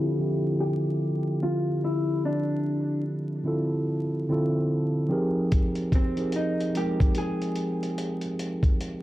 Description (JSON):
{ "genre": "lo-fi hip hop", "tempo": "73 BPM", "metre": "4/4", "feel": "swing 61% on 16ths", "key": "D minor", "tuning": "A4 = 440 Hz", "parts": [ { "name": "vintage hollow-body jazz guitar", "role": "melody", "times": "0.0-9.0 s", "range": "C4 to Ab4", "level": "-31 LUFS", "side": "left 2 dB", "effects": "low-pass filter, tape echo" }, { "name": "mellow tine electric piano", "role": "accompaniment", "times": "0.0-9.0 s", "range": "D3 to G5", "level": "-26 LUFS", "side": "right 1 dB", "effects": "cassette tape, low-pass filter" }, { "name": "lo-fi sampler-style drum kit", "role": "drums", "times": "5.5-9.0 s", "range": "hi-hat, kick drum", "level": "-25 LUFS", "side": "equal", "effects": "none" } ], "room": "moderate spring reverb, RT60 2.3 s", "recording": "dark, warm production, vinyl crackle", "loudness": "-24 LUFS", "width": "side -15 dB against mid", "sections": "0.0-9.0 A section", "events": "filter sweep 0.0-9.0", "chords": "0.0 Dm11; 5.1 Fm11" }